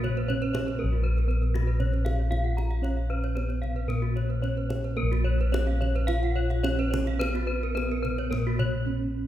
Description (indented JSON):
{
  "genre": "Balinese gamelan",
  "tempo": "108-121 BPM",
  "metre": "4/4",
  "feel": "straight",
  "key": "Bb pelog",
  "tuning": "A4 = 440 Hz",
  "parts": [
    { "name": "gamelan-type bronze metallophone", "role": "melody", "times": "0.0-9.3 s", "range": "Bb3 to F4-30c", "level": "-33 LUFS", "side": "right 3 dB", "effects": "none" },
    { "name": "gamelan-type bronze metallophone", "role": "arpeggios", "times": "0.0-8.7 s", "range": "Gb4-20c to Bb5", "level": "-34 LUFS", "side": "left 2 dB", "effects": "none" },
    { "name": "gamelan-type bronze metallophone", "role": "arpeggios", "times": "0.0-8.6 s", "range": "Gb4-20c to Gb5-20c", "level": "-37 LUFS", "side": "right 6 dB", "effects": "none" },
    { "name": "gamelan-type bossed gongs", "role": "bass", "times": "0.0-9.3 s", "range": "Bb1 to Cb5+20c", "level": "-26 LUFS", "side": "equal", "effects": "none" },
    { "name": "kendang", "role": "percussion", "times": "0.0-8.7 s", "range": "none", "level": "-37 LUFS", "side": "left 1 dB", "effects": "none" }
  ],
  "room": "moderate scoring stage reverb, RT60 1.8 s",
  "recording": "heard from further back in the room",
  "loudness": "-24 LUFS",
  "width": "side -12 dB against mid",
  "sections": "0.0-5.0 A section; 5.0-9.3 B section",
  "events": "none",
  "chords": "none"
}